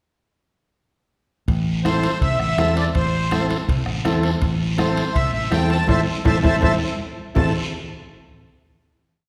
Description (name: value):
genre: latin, cumbia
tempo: 163 BPM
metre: 4/4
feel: straight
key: A minor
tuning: A4 = 440 Hz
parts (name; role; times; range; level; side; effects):
- fingered electric bass; bass; 1.5-7.5 s; A1 to E2; -25 LUFS; equal; none
- bombo; percussion; 1.5-7.4 s; none; -27 LUFS; equal; none
- congas; percussion; 1.5-7.4 s; none; -31 LUFS; equal; none
- guiro; percussion; 1.5-7.4 s; none; -36 LUFS; equal; none
- timbales; percussion; 1.5-7.4 s; none; -35 LUFS; equal; none
- accordion; melody; 1.8-7.5 s; C5 to A5; -26 LUFS; equal; light tremolo tuning
- combo organ; accompaniment; 1.8-7.5 s; C4 to A4; -28 LUFS; equal; none
room: wet recital hall reverb, RT60 1.6 s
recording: recorded in a church or concert hall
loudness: -20 LUFS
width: mono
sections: 1.5-7.4 A section; 7.4-8.8 final chord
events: drum fill 5.9-7.4; band accent 5.9-7.4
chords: 1.5 Am